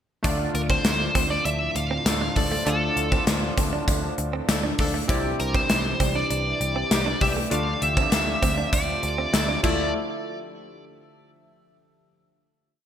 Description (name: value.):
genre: 1980s-style pop.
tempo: 99 BPM.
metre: 4/4.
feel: straight.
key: D minor.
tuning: A4 = 441 Hz.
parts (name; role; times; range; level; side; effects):
chorused retro synth keys; accompaniment; 0.2-10.0 s; D2 to D5; -30 LUFS; left 1 dB; none.
sweeping resonant pad; sustained chords; 1.0-9.9 s; A2 to G4; -33 LUFS; equal; chorus, phaser.
direct-recorded clean electric guitar; riff; 0.2-9.8 s; A3 to D4; -33 LUFS; right 6 dB; lush chorus.
vintage muted picked electric bass; bass; 0.2-9.9 s; C2 to D2; -30 LUFS; equal; none.
gated 80s drum kit; drums; 0.2-9.8 s; crash cymbal, hi-hat, kick drum, snare drum; -24 LUFS; equal; gated reverb.
dark smooth lead guitar; melody; 0.6-9.9 s; A4 to F5; -26 LUFS; equal; overdrive.
clear horn section; stabs; 2.1-9.8 s; E3 to A4; -34 LUFS; left 3 dB; digital delay.
room: moderate lush hall reverb, RT60 1.9 s.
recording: bright 1980s-style digital production.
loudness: -21 LUFS.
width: side -9 dB against mid.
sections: 0.2-9.9 chorus; 9.9-12.4 final hit.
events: none.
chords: 0.2 Dm; 5.1 Cadd9; 7.5 Dmadd9; 9.9 N.C..